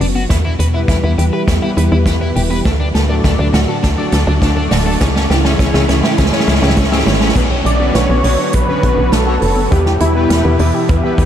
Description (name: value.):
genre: synthwave.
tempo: 102 BPM.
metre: 4/4.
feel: straight.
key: B minor.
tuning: A4 = 440 Hz.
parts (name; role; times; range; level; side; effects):
lush unison pad; sustained chords; 0.0-11.3 s; G#2 to C#5; -20 LUFS; equal; chorus, sidechain pumping.
warbly dusty pluck; arpeggios; 0.0-11.3 s; G#3 to E5; -24 LUFS; right 2 dB; chorus, tape echo.
overdriven electric guitar; riff; 0.0-7.3 s; C#4 to C#5; -25 LUFS; left 2 dB; lush chorus, low-pass filter, tape echo.
analog synth brass; stabs; 0.0-11.3 s; F#3 to E5; -22 LUFS; left 3 dB; chorus, cassette tape, tape echo.
tight sequencer bass; bass; 0.0-11.3 s; D1 to E2; -15 LUFS; equal; tube saturation.
unplugged drum kit; drums; 0.0-11.3 s; crash cymbal, hi-hat, snare drum; -19 LUFS; right 2 dB; none.
kick drum; drums; 0.3-11.3 s; none; -18 LUFS; equal; none.
wide unison lead; melody; 7.7-10.8 s; E4 to D5; -17 LUFS; equal; tape echo.
room: moderate huge ambient reverb, RT60 8.3 s.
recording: dreamy mix soaked in reverb.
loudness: -11 LUFS.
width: side -10 dB against mid.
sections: 0.0-7.4 A section; 7.4-11.3 B section.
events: drum fill 0.0-7.4; filter sweep on analog synth pad 0.0-7.4; filter sweep on analog polysynth 0.0-7.4.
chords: 0.3 Em; 2.7 D; 5.0 C#m; 7.4 Bmadd9; 9.7 Em.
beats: | 0.30 0.89 1.48 2.06 | 2.65 3.24 3.83 4.42 | 5.01 5.59 6.18 6.77 | 7.36 7.95 8.54 9.12 | 9.71 10.30 10.89.